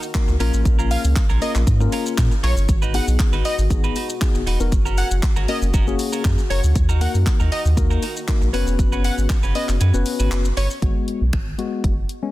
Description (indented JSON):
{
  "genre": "dance-pop",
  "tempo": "118 BPM",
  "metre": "4/4",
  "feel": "straight",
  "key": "G# minor",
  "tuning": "A4 = 438 Hz",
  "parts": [
    { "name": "mellow French horn section", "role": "sustained chords", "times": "0.0-10.8 s", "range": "B2 to F#4", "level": "-34 LUFS", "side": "left 4 dB", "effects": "sidechain pumping" },
    { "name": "clean electric guitar", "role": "riff", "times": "0.0-10.8 s", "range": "C#4 to B4", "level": "-31 LUFS", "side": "right 7 dB", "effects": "wide subtle chorus" },
    { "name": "house drum kit", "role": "drums", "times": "0.0-12.2 s", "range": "finger snaps, handclaps, hi-hat, kick drum, shaker", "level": "-21 LUFS", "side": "equal", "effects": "soft clipping on snare" },
    { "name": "mellow tine electric piano", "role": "accompaniment", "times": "0.1-12.3 s", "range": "G#3 to B4", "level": "-26 LUFS", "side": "left 6 dB", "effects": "sidechain pumping" },
    { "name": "round analog bass", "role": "bass", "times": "0.3-12.0 s", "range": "E1 to A#2", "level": "-19 LUFS", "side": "equal", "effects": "sidechain pumping" },
    { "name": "plucky unison lead", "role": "melody", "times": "0.9-10.7 s", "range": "C#5 to F#5", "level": "-29 LUFS", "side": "equal", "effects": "dub echo" }
  ],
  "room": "little or no reverb",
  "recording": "dense, heavily limited modern master",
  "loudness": "-17 LUFS",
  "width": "side -16 dB against mid",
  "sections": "0.0-10.8 A section; 10.8-12.3 B section",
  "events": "drop 0.0-10.8; kick muted 9.8-10.8",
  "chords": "0.4 A#m; 2.7 G#m7; 4.7 F#; 6.8 D#m; 8.5 F#sus4; 10.8 G#m7",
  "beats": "0.15 | 0.65 1.16 1.67 2.18 | 2.69 3.20 3.71 4.21 | 4.72 5.23 5.74 6.25 | 6.76 7.26 7.77 8.28 | 8.79 9.30 9.81 10.31 | 10.82 11.33 11.84"
}